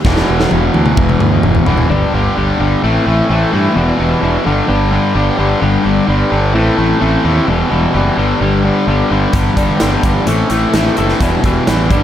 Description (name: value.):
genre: quiet-loud alternative rock.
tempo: 129 BPM.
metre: 4/4.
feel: straight.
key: unclear.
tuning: A4 = 442 Hz.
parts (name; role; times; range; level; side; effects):
big rock drum kit; drums; 0.0-1.9, 9.3-12.0 s; hi-hat, kick drum, snare drum, toms; -16 LUFS; equal; none.
distorted electric guitar; riff; 0.1-12.0 s; E2 to A3; -15 LUFS; equal; overdrive.
fuzz fingered electric bass; bass; 0.1-12.0 s; E1 to G2; -16 LUFS; equal; overdrive.
twelve-string electric guitar; arpeggios; 1.9-12.0 s; E2 to A4; -18 LUFS; left 4 dB; lush chorus.
room: moderate studio reverb, RT60 0.8 s.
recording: none.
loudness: -11 LUFS.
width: side -10 dB against mid.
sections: 0.0-1.9 A section; 1.9-12.0 B section.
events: drum fill 0.1-1.9.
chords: 0.1 E5; 1.9 G; 2.8 Am; 3.8 Em7; 4.5 G; 6.5 Am; 7.5 Em7; 8.2 G; 10.3 Am; 11.2 Em7.